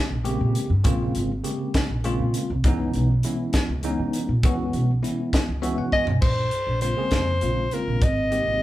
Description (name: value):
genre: electric jazz fusion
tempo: 67 BPM (dotted quarters)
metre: 6/8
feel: straight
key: Bb dorian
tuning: A4 = 440 Hz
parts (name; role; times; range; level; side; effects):
- bell-like tine electric piano; accompaniment; 0.0-8.6 s; Db3 to Ab5; -26 LUFS; equal; fast stereo tremolo
- upright bass; bass; 0.1-8.6 s; Ab1 to Db3; -24 LUFS; equal; none
- crisp fusion drum kit; drums; 0.3-8.5 s; crash cymbal, hi-hat, kick drum, snare drum, toms; -24 LUFS; equal; none
- clear soprano saxophone; melody; 5.9-8.6 s; Bb4 to Eb5; -24 LUFS; left 1 dB; slapback echo
room: light reverb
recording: band playing live in one room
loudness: -21 LUFS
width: side -15 dB against mid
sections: 0.0-6.2 A section; 6.2-8.6 B section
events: tine electric piano fill 5.3-6.2; drum fill 5.9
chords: 0.0 Bbm9; 2.6 Dbm9; 6.2 Bbm9; 8.0 Abmaj9